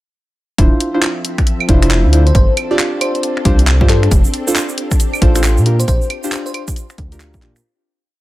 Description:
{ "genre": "UK garage, two-step garage", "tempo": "136 BPM", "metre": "4/4", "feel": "swing 62% on 16ths", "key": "D minor", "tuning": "A4 = 440 Hz", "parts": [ { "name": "soft string machine", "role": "sustained chords", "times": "0.8-7.6 s", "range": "F3 to E5", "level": "-26 LUFS", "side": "left 1 dB", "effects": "ensemble chorus, sidechain pumping" }, { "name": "deep mellow chord stab", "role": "stabs", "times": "0.6-7.5 s", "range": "D4 to D5", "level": "-19 LUFS", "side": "right 1 dB", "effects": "chorus, digital delay" }, { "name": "dark detuned saw bass", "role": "bass", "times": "0.6-7.6 s", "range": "D1 to Bb2", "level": "-13 LUFS", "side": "equal", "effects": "none" }, { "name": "electronic kick drum", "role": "drums", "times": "0.6-7.4 s", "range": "none", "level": "-13 LUFS", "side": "equal", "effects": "overdrive" }, { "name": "garage drum kit", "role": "drums", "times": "0.6-7.6 s", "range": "claves, finger snaps, handclaps, hi-hat", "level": "-20 LUFS", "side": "right 1 dB", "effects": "none" }, { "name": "bell-like FM electric piano", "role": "melody", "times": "2.3-6.6 s", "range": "A4 to C5", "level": "-23 LUFS", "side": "left 3 dB", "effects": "chorus, phaser, digital delay" }, { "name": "egg shaker", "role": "percussion", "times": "4.1-7.6 s", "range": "none", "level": "-26 LUFS", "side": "right 5 dB", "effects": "none" } ], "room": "digital ambience", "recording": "none", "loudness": "-11 LUFS", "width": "side -17 dB against mid", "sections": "0.6-7.6 drop", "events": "drop 0.6-7.6; fade-out 5.3-7.6", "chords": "0.6 Dm9; 2.4 G7sus4; 4.1 F6; 5.7 Bb6" }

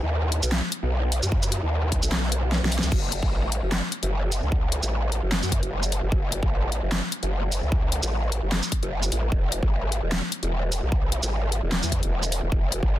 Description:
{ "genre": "heavy wobble dubstep", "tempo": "150 BPM", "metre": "4/4", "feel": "swing 54% on 16ths, half-time", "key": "F# dorian", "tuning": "A4 = 440 Hz", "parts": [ { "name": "growl bass", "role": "bass", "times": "0.0-13.0 s", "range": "E1 to F#2", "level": "-25 LUFS", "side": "equal", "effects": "distortion, chorus, overdrive" }, { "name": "dubstep drum kit", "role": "drums", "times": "0.3-12.8 s", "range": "crash cymbal, handclaps, hi-hat, shaker, snare drum", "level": "-27 LUFS", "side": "left 1 dB", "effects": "overdrive" }, { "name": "electronic kick drum", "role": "drums", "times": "1.3-12.9 s", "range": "none", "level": "-24 LUFS", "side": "equal", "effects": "overdrive" } ], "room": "little or no reverb", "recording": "dense, heavily limited modern master", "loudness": "-22 LUFS", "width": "side -14 dB against mid", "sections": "0.0-2.9 A section; 2.9-13.0 A section", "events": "drop 0.0-2.9, 2.9-13.0; kick drops out 2.5-2.9; drum fill 2.5-2.9", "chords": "none" }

